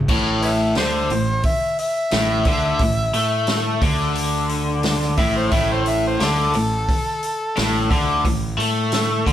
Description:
blues rock power trio and southern rock; 88 BPM; 4/4; straight; A4 = 440 Hz
overdriven electric guitar; riff; 0.0-9.3 s; A2 to A3; -20 LUFS; left 1 dB
fuzz fingered electric bass; bass; 0.0-9.3 s; A1 to A2; -26 LUFS; equal; overdrive
vintage drum kit; drums; 0.1-9.3 s; crash cymbal, hi-hat, kick drum, snare drum; -23 LUFS; equal
overdriven harmonica; melody; 0.4-8.2 s; A4 to E5; -23 LUFS; equal
light reverb; band playing live in one room; -17 LUFS; side -11 dB against mid
0.1-9.3 A section
harmonica solo 0.1-9.3
0.1 A5

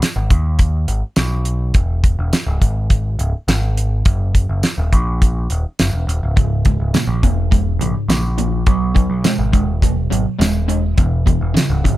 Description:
classic rock; 104 BPM; 4/4; straight; A4 = 440 Hz
damped 70s drum kit; drums; 0.0-12.0 s; hi-hat, kick drum, snare drum, tambourine; -16 LUFS; equal
growling picked electric bass; bass; 0.2-12.0 s; C#1 to D#2; -18 LUFS; equal; overdrive
crunchy overdriven guitar; riff; 6.4-12.0 s; C#2 to G#3; -20 LUFS; right 1 dB
little or no reverb; -14 LUFS; side -15 dB against mid
0.0-12.0 A section
0.0 B; 1.8 E; 4.1 F#; 6.4 C#m; 8.7 B; 11.0 E5

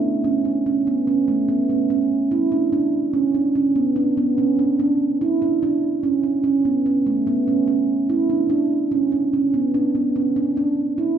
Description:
contemporary instrumental, contemporary; 145 BPM; 7/4; straight; A4 = 439 Hz
handpan; solo; 0.0-11.1 s; A3 to E4; -17 LUFS; right 2 dB
wet scoring stage reverb, RT60 1.8 s; heard from further back in the room; -17 LUFS; side -8 dB against mid
0.0-11.2 A section

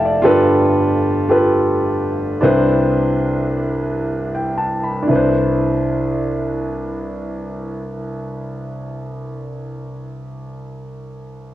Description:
gospel; 39-57 BPM (dotted quarters); 6/8; straight; C major; A4 = 440 Hz
warm concert grand piano; accompaniment; 0.0-11.5 s; F1 to B5; -17 LUFS; equal; cassette tape
moderate spring reverb, RT60 2.3 s; home recording on cassette; -15 LUFS; side -14 dB against mid
0.0-5.1 A section; 5.1-11.3 B section
grand piano fill 0.0; slowing down 0.2-5.1
0.2 G9; 2.4 Cmaj9

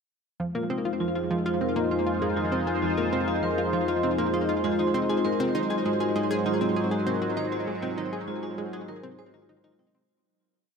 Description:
ambient, sequencer-driven space music; 99 BPM; 4/4; straight; F phrygian; A4 = 440 Hz
sweeping resonant pad; sustained chords; 0.4-10.1 s; Gb3 to C5; -28 LUFS; equal; chorus, shimmer reverb
analog pluck; riff; 0.4-10.0 s; F3 to C5; -30 LUFS; equal; chorus, tape echo, shimmer reverb
analog drone; bass; 1.0-10.1 s; F2 to Ab2; -37 LUFS; equal; chorus, tube saturation
bubbling stepped-filter texture; texture; 3.4-10.1 s; C5; -43 LUFS; right 1 dB
vibraphone with hard mallets; arpeggios; 0.5-9.8 s; Eb4 to C5; -32 LUFS; left 2 dB; auto-pan, low-pass filter, tape echo, shimmer reverb
wet huge ambient reverb, RT60 8.5 s; dreamy mix soaked in reverb; -24 LUFS; side -6 dB against mid
0.4-10.1 A section
fade-out 6.9-10.1
0.4 Fm7; 5.2 Ab7

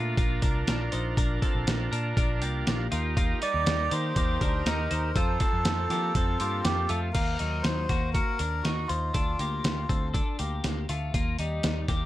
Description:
jangly indie pop; 120 BPM; 4/4; straight; A4 = 440 Hz
combo organ; accompaniment; 0.0-7.1 s; C4 to Bb4; -35 LUFS; right 5 dB
twelve-string electric guitar; arpeggios; 0.0-12.1 s; Gb3 to C5; -34 LUFS; left 4 dB; wide subtle chorus
vintage muted picked electric bass; bass; 0.0-12.1 s; Bb1 to F3; -30 LUFS; equal
dusty soul sampler-style drum kit; drums; 0.2-12.0 s; crash cymbal, hi-hat, kick drum, snare drum; -28 LUFS; equal
melodica; melody; 3.4-10.1 s; F4 to D5; -31 LUFS; right 1 dB
glockenspiel with soft plastic mallets; second line; 3.4-6.6 s; A5 to D6; -42 LUFS; right 6 dB
little or no reverb; dark, warm production; -25 LUFS; side -15 dB against mid
0.0-7.1 A section; 7.1-12.1 B section
0.0 Bb; 2.9 Eb; 5.2 F; 7.1 Ebm; 9.1 Dm; 11.1 Eb

